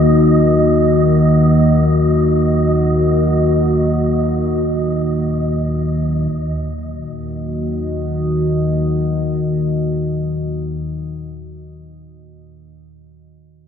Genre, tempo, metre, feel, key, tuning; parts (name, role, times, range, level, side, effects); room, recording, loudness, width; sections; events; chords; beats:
dark ambient drone; free time; Eb minor; A4 = 440 Hz
dark analog pad; sustained chords; 0.0-11.2 s; Bb3 to Eb5; -18 LUFS; equal; chorus, phaser
deep rumbling drone; drone; 0.0-10.8 s; Eb2 to Eb3; -17 LUFS; left 1 dB; built-in reverb
wind-like tuned noise texture; texture; 0.0-6.3 s; Eb5; -24 LUFS; right 5 dB; built-in reverb
wet cathedral reverb, RT60 5.6 s; dark, warm production; -14 LUFS; side -8 dB against mid
0.0-6.3 A section; 6.3-10.8 B section
0.0 Ebm
free time